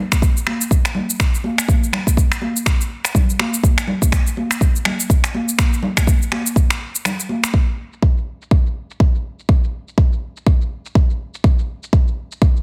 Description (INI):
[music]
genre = house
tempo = 123 BPM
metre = 4/4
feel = swing 58% on 16ths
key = none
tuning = none
[part]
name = electronic finger snaps and shaker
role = drums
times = 0.1-12.6 s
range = none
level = -24 LUFS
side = equal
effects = soft clipping on snare, low-pass filter on snare, studio reverb, low-pass filter on perc
[part]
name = electronic kick drum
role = drums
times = 0.1-12.5 s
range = none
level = -17 LUFS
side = equal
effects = studio reverb
[part]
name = congas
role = percussion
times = 0.1-7.4 s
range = none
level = -27 LUFS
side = equal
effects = none
[sound]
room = little or no reverb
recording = dense, heavily limited modern master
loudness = -18 LUFS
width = mono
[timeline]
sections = 0.0-7.5 A section; 7.5-12.6 B section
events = kick drops out 7.1-7.5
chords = none